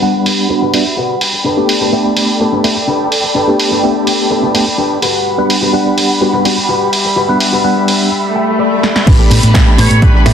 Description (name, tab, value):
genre	filtered disco house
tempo	126 BPM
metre	4/4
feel	straight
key	unclear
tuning	A4 = 441 Hz
part	bright reed electric piano	accompaniment	0.0-10.3 s	G3 to F#5	-14 LUFS	equal	fast tremolo, phaser, sidechain pumping, low-pass filter
part	warm studio violin section	sustained chords	0.0-10.3 s	G3 to B5	-18 LUFS	equal	sidechain pumping, low-pass filter
part	electric guitar at the edge of break-up	riff	0.0-10.3 s	D4 to G5	-18 LUFS	left 2 dB	vintage 12-bit sampler grit, sidechain pumping, low-pass filter
part	punchy analog drum machine	drums	0.3-10.3 s	crash cymbal, finger snaps, hi-hat, snare drum	-16 LUFS	right 1 dB	sidechain pumping on hats, low-pass filter on hats, low-pass filter on snare, sidechain pumping on cymbals, low-pass filter on cymbals
part	swell	sound effects	8.3-9.1 s	none	-16 LUFS	left 2 dB	none
part	hollow-body short-scale fingered electric bass	bass	9.1-10.3 s	A1 to A2	-11 LUFS	equal	sidechain pumping, low-pass filter
part	electronic kick drum	drums	9.1-10.1 s	none	-9 LUFS	right 1 dB	none
part	muted trumpet section	melody	9.8-10.2 s	B4 to C#5	-16 LUFS	right 1 dB	sidechain pumping, low-pass filter, dub echo
room	moderate echo chamber reverb, RT60 1.8 s, digital ambience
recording	dense, heavily limited modern master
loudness	-9 LUFS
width	side -8 dB against mid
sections	0.0-9.1 A section; 9.1-10.3 B section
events	filter sweep 0.0-9.1; clean electric guitar fill 0.5-1.5, 8.1-9.1; swell 8.3-9.1; drum fill 8.8; drop 9.1-10.3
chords	0.0 Gmaj7; 1.5 A9sus4; 5.0 Gmaj7; 9.1 A9sus4